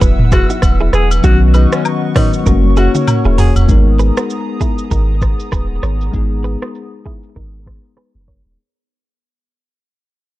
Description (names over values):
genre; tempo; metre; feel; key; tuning
afrobeats; 98 BPM; 4/4; swing 58% on 16ths; unclear; A4 = 440 Hz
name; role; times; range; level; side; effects
bell-like tine electric piano; accompaniment; 0.0-8.6 s; D3 to A#4; -19 LUFS; left 6 dB; none
hollow soft pad; sustained chords; 0.0-8.5 s; B3 to E6; -25 LUFS; right 1 dB; chorus
direct-recorded clean electric guitar; riff; 0.0-8.4 s; D#4 to C#5; -24 LUFS; right 5 dB; digital delay
punchy sub bass; bass; 0.0-8.6 s; D#1 to B1; -13 LUFS; equal; none
afro-pop drum kit; drums; 0.0-8.6 s; hi-hat, kick drum, rim click, shaker, toms; -15 LUFS; equal; vintage 12-bit sampler grit
breathy alto saxophone; melody; 0.3-3.5 s; C#4 to G#4; -22 LUFS; left 1 dB; digital delay
agogo bells and woodblock; percussion; 0.3-3.7 s; none; -26 LUFS; left 5 dB; none
room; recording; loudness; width
digital ambience; dark, warm production, low-pass filter; -11 LUFS; side -16 dB against mid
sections
0.0-3.7 A section; 3.7-8.6 B section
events
drum fill 2.5-3.7; fade-out 3.7-8.6; filter sweep 3.7-8.6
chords
0.0 G#m; 1.2 Badd9; 2.5 F#; 3.7 G#madd9